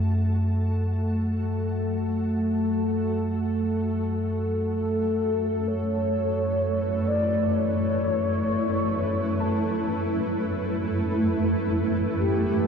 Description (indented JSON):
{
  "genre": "dark ambient drone",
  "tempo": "free time",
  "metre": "none",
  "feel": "none",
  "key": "unclear",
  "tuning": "A4 = 440 Hz",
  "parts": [
    { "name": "granular cloud pad", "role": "sustained chords", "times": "0.0-12.7 s", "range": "F#2 to A5", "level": "-28 LUFS", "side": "equal", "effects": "built-in reverb" },
    { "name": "analog drone", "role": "drone", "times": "0.0-12.7 s", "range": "F#2 to A3", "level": "-25 LUFS", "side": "equal", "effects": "chorus" },
    { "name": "mellow horn-like synth lead", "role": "melody", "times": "4.8-12.7 s", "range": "G4 to D5", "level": "-28 LUFS", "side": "equal", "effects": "wide subtle chorus, ping-pong delay" }
  ],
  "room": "wet huge ambient reverb, RT60 6.9 s",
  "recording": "dark, warm production",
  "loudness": "-23 LUFS",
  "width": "side -6 dB against mid",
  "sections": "0.0-12.7 A section",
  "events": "fade-in on ambient pad 0.0-12.7; filter sweep on synth drone 0.0-12.7",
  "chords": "0.0 F#m; 3.8 A/F#"
}